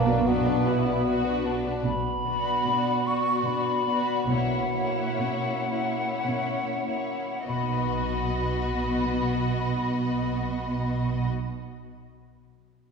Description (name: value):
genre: classical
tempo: 48-77 BPM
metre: 3/4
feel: rubato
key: unclear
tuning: A4 = 440 Hz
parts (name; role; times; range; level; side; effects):
- warm studio violin section; melody; 0.0-11.3 s; B4 to D#5; -36 LUFS; left 4 dB; none
- rich symphonic violin section; second line; 0.0-11.3 s; D4 to F#4; -34 LUFS; left 2 dB; none
- clear bassoon; accompaniment; 0.0-1.5 s; A#3 to B3; -29 LUFS; equal; none
- warm symphonic viola section; accompaniment; 0.0-11.3 s; A#3 to B4; -33 LUFS; equal; none
- mellow French horn section; sustained chords; 0.0-1.4 s; A#3 to B3; -34 LUFS; left 2 dB; none
- concert harp; arpeggios; 0.0-11.6 s; B2 to D#5; -33 LUFS; left 2 dB; none
- warm symphonic cello section; bass; 0.0-11.3 s; B2; -31 LUFS; right 2 dB; none
- warm symphonic double bass section; bass; 0.0-11.3 s; B1; -32 LUFS; right 4 dB; none
- silver concert flute; second line; 1.9-11.3 s; F#5 to C#6; -29 LUFS; left 2 dB; none
room: wet concert hall reverb, RT60 2.2 s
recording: heard from further back in the room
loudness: -24 LUFS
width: side -5 dB against mid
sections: 0.0-1.9 A section; 1.9-7.5 B section; 7.5-12.9 C section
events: slowing down 0.7-7.5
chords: 0.0 Bm; 4.3 F#7/B; 7.5 B